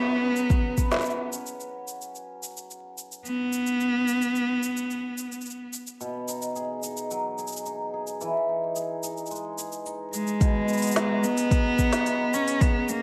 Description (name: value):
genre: folktronica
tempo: 109 BPM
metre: 4/4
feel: straight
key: B major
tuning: A4 = 440 Hz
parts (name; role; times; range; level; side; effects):
- rich cello; melody; 0.0-5.7, 10.1-13.0 s; G#3 to C#4; -28 LUFS; equal; delay
- cimbalom; arpeggios; 0.0-13.0 s; B2 to B4; -33 LUFS; equal; delay
- organic electronic drum kit; drums; 0.4-13.0 s; hi-hat, shaker, snare drum; -34 LUFS; equal; overdrive
- electronic kick drum; drums; 0.5-0.9, 10.4-12.7 s; none; -25 LUFS; equal; overdrive
room: light reverb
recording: vinyl crackle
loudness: -27 LUFS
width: mono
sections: 0.0-1.6 A section; 1.6-10.4 B section; 10.4-13.0 C section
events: none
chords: 0.0 F#sus4; 1.6 N.C.; 6.0 B6; 8.2 Emaj7; 10.4 B6